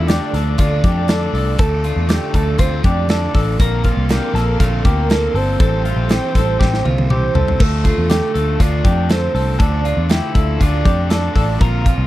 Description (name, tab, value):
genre	jangly indie pop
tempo	120 BPM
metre	4/4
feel	straight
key	D minor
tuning	A4 = 439 Hz
part	warm velvety synth lead	melody	0.0-12.1 s	A4 to F5	-24 LUFS	right 4 dB	chorus, tape echo
part	clear cor anglais	second line	0.0-12.1 s	A3 to F4	-28 LUFS	left 12 dB	tape echo
part	crunchy overdriven guitar	accompaniment	0.0-12.1 s	A2 to F4	-25 LUFS	right 5 dB	spring reverb
part	string machine, violas	sustained chords	0.0-7.6 s	A4 to D6	-32 LUFS	left 1 dB	ensemble chorus
part	twelve-string electric guitar	arpeggios	0.0-12.1 s	F4 to Bb4	-25 LUFS	left 6 dB	none
part	vintage muted picked electric bass	bass	0.0-12.1 s	G1 to F2	-18 LUFS	equal	none
part	big rock drum kit	drums	0.1-12.0 s	crash cymbal, hi-hat, kick drum, snare drum, toms	-17 LUFS	equal	none
room	little or no reverb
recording	dry, close 1970s-style studio recording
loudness	-14 LUFS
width	side -15 dB against mid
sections	0.0-7.6 A section; 7.6-12.1 A section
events	drum fill 6.6-7.6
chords	0.0 Dm; 3.6 Bbadd9; 5.6 Am7; 7.6 Dm